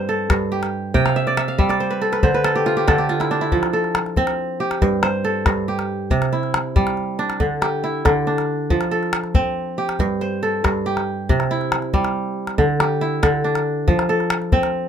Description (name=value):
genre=west african traditional, West African string and xylophone music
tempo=93 BPM (dotted quarters)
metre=12/8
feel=straight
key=F lydian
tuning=A4 = 440 Hz
part: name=kora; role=arpeggios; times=0.0-14.9 s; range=G2 to G5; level=-19 LUFS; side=right 1 dB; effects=none
part: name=calabash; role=percussion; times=0.3-14.7 s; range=none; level=-20 LUFS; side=left 2 dB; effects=none
room=light reverb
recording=close, detailed microphones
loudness=-17 LUFS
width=side -8 dB against mid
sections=0.0-8.7 A section; 8.7-14.9 B section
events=kora fill 0.9-3.5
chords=0.0 Gsus24; 0.9 C5; 2.2 N.C.; 3.5 F; 4.8 Gsus24; 6.1 C; 7.4 Dsus24; 8.7 F; 10.0 Gsus24; 11.3 C; 12.6 Dsus24; 13.9 F